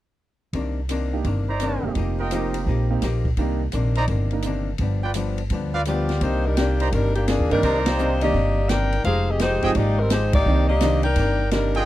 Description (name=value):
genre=jazz, big band swing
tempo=169 BPM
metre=4/4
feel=swing 65% on 8ths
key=C minor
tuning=A4 = 440 Hz
part: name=archtop guitar, miked and amplified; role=accompaniment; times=0.5-11.8 s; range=G2 to G4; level=-28 LUFS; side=left 4 dB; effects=none
part: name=upright bass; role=bass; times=0.5-11.8 s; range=E1 to G2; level=-23 LUFS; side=equal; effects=none
part: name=open jazz drum kit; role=drums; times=0.5-11.8 s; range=hi-hat, kick drum, ride cymbal, snare drum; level=-28 LUFS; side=equal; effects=none
part: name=clear grand piano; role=accompaniment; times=1.1-4.4, 7.5-11.0 s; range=Eb3 to Bb4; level=-28 LUFS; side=right 6 dB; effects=none
part: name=clear trumpet section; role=stabs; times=1.5-11.9 s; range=Eb4 to Bb5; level=-26 LUFS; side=right 2 dB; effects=none
part: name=clear saxophone section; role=melody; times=5.9-11.9 s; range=Eb3 to G5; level=-23 LUFS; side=left 1 dB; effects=none
room=little or no reverb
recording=dry, close 1970s-style studio recording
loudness=-19 LUFS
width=side -14 dB against mid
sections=0.5-6.2 A section; 6.2-11.9 B section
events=band accent 7.8, 10.3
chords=0.5 Cm9; 2.0 F9sus4; 3.4 Cm9; 4.8 G7; 6.2 Cm9; 9.1 Fm9; 10.5 Cm9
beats=| 0.55 0.90 1.25 1.61 | 1.97 2.32 2.67 3.03 | 3.38 3.74 4.09 4.45 | 4.80 5.16 5.51 5.87 | 6.22 6.58 6.93 7.28 | 7.64 7.99 8.35 8.70 | 9.05 9.41 9.76 10.11 | 10.47 10.82 11.17 11.53